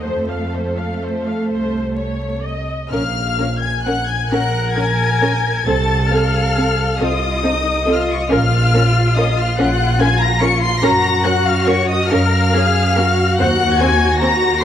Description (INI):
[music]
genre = classical, slow romantic movement for string orchestra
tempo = 41-49 BPM (dotted quarters)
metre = 6/8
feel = rubato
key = Bb minor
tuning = A4 = 441 Hz
[part]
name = rich studio violin section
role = melody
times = 0.0-14.6 s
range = A4 to Db7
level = -21 LUFS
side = left 6 dB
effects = none
[part]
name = warm studio violin section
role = second line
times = 0.0-14.6 s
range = A4 to Db6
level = -22 LUFS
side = left 2 dB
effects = none
[part]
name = rich studio viola section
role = accompaniment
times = 0.0-14.6 s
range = C4 to F5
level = -22 LUFS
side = equal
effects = none
[part]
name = rich studio cello section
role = bass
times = 0.0-14.6 s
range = A3 to Bb4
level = -22 LUFS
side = equal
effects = none
[part]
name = rich studio double bass section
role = bass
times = 0.1-14.6 s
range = Bb1 to Gb2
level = -19 LUFS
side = right 1 dB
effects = none
[sound]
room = moderate scoring stage reverb, RT60 2.0 s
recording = vinyl crackle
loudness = -14 LUFS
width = side -10 dB against mid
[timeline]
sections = 0.0-2.9 A section; 2.9-14.6 B section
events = none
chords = 0.1 F; 2.9 Bbm; 5.7 F7/C; 8.3 Bbm; 10.8 Gbmaj7; 13.4 Cdim/Eb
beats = | 0.07 1.50 | 2.93 4.30 | 5.67 7.01 | 8.30 9.58 | 10.83 12.10 | 13.38 14.61